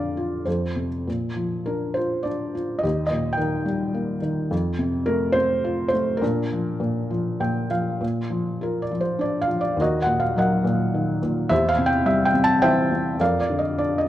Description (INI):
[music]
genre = classical, lyrical solo piano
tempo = 97-109 BPM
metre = 3/4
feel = rubato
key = Bb major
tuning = A4 = 438 Hz
[part]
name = felt-muted upright piano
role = solo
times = 0.0-14.1 s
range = Eb2 to A5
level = -20 LUFS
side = equal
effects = none
[sound]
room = moderate recital hall reverb, RT60 1.4 s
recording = dark, warm production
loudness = -21 LUFS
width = side -13 dB against mid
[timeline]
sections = 0.0-8.0 A section; 8.0-14.1 B section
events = felt piano fill 7.1-8.0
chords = 0.5 F; 1.1 Bb; 2.8 Eb; 4.5 F; 6.2 Bb; 9.8 Ebm; 11.5 C/E; 13.2 Bb/F